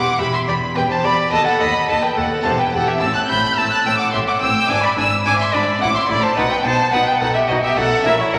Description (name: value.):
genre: classical, baroque-style concerto movement with solo episodes.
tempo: 107 BPM.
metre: 3/4.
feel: straight.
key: E minor.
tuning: A4 = 440 Hz.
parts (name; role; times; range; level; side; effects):
rich chamber violin section; melody; 0.0-8.4 s; C#5 to G6; -22 LUFS; equal; none.
rich violin; melody; 0.0-8.4 s; E4 to B5; -22 LUFS; equal; none.
rich chamber violin section; second line; 0.0-8.4 s; C#5 to G6; -25 LUFS; equal; none.
harpsichord; accompaniment; 0.0-8.4 s; D#2 to B4; -30 LUFS; equal; none.
warm symphonic viola section; accompaniment; 0.2-8.4 s; C4 to A4; -29 LUFS; equal; none.
rich chamber double bass section; bass; 0.2-8.4 s; E1 to D#2; -30 LUFS; equal; none.
warm chamber cello section; bass; 0.2-8.4 s; D#2 to B2; -31 LUFS; equal; none.
room: wet concert hall reverb, RT60 2.2 s.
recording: vinyl crackle.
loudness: -17 LUFS.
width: mono.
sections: 0.0-8.4 A section.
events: none.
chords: 0.0 Em; 1.3 B7/D#; 2.5 Em; 3.0 Am; 4.7 E7/G#; 5.8 Am; 6.4 B.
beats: 0.20 0.76 | 1.33 1.89 2.45 | 3.02 3.58 4.13 | 4.69 5.25 5.81 | 6.37 6.93 7.49 | 8.05.